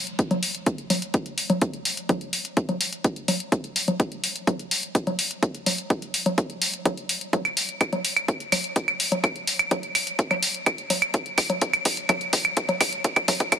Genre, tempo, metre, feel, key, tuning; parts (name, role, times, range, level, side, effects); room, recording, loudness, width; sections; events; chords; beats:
techno; 126 BPM; 4/4; straight
electronic hi-hat, congas and claves; drums; 0.1-13.6 s; -23 LUFS; equal; sidechain pumping on perc, high-pass filter on perc, sidechain pumping on hats, high-pass filter on hats, high-pass filter on room
electronic kick drum; drums; 0.2-13.6 s; -24 LUFS; equal; overdrive, high-pass filter on kick
light reverb; -22 LUFS; side -9 dB against mid
0.0-13.6 A section
build-up 0.0-13.6; drum fill 7.3-13.6
0.19 0.66 1.14 | 1.62 2.09 2.57 3.04 | 3.52 4.00 4.47 4.95 | 5.43 5.90 6.38 6.86 | 7.33 7.81 8.28 8.76 | 9.24 9.71 10.19 10.66 | 11.14 11.62 12.09 12.57 | 13.04 13.52